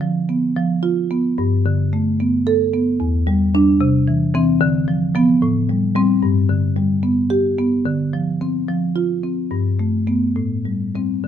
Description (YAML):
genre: classical, contemporary piece for solo marimba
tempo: 73 BPM (dotted quarters)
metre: 6/8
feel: rubato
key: D dorian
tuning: A4 = 440 Hz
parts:
  - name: marimba with soft mallets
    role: solo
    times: 0.0-11.3 s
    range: E2 to A4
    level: -16 LUFS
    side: equal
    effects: none
room: moderate stone room reverb, RT60 1.0 s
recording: none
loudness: -16 LUFS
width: side -9 dB against mid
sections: 0.0-11.3 A section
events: none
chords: 0.0 Dm6; 1.4 Gadd9; 3.0 Em7; 3.8 C; 4.6 Dm6; 5.4 Am7; 6.2 G; 7.9 Dm7; 9.5 Gadd9; 10.4 Am7